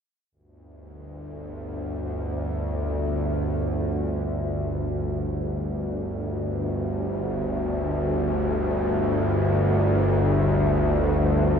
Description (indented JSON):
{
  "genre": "ambient",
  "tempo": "free time",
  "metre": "none",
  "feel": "none",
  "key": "unclear",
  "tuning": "A4 = 440 Hz",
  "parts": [
    { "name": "bowed-like drone", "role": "solo", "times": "1.0-11.6 s", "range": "G1 to D2", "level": "-23 LUFS", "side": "equal", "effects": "built-in reverb" }
  ],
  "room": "wet cathedral reverb, RT60 6.7 s",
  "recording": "worn, warbling old tape, cassette tape, warbly pitch drift",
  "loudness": "-23 LUFS",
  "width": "side -7 dB against mid",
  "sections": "0.3-11.6 A section",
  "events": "none",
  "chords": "0.3 G5"
}